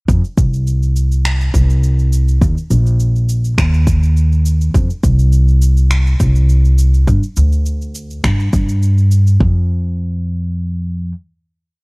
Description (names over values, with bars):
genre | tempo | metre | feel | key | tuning
sunset chillout | 103 BPM | 4/4 | swing 54% on 16ths | unclear | A4 = 441 Hz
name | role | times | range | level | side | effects
upright bass | bass | 0.1-11.1 s | Bb1 to G2 | -12 LUFS | equal | none
electronic cabasa and finger snaps | drums | 0.1-9.4 s | none | -25 LUFS | equal | cassette tape
electronic kick drum | drums | 0.1-9.5 s | none | -15 LUFS | equal | cassette tape
room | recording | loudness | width
little or no reverb | home recording on cassette | -11 LUFS | side -34 dB against mid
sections
0.1-9.4 groove; 9.4-11.7 final note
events
none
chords
none